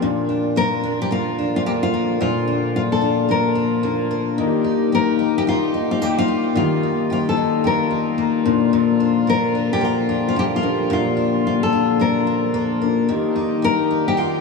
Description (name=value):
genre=pop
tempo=110 BPM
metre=4/4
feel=swing 60% on 16ths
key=Bb major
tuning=A4 = 440 Hz
part: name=felt-muted upright piano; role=accompaniment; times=0.0-14.4 s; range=Bb3 to G4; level=-24 LUFS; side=left 10 dB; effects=none
part: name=picked steel-string acoustic guitar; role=accompaniment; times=0.0-14.4 s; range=Bb2 to Bb4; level=-21 LUFS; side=left 1 dB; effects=wide subtle chorus
part: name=clear brass ensemble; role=sustained chords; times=0.0-14.4 s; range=D3 to G4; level=-27 LUFS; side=left 4 dB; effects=none
part: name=nylon-string guitar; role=melody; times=0.6-14.4 s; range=F4 to Bb4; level=-21 LUFS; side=left 2 dB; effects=tape echo
room=wet cathedral reverb, RT60 5.7 s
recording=dreamy mix soaked in reverb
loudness=-17 LUFS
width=side -3 dB against mid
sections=0.0-14.4 A section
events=none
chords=0.0 Bb; 4.4 Eb; 8.5 Bb; 13.1 Eb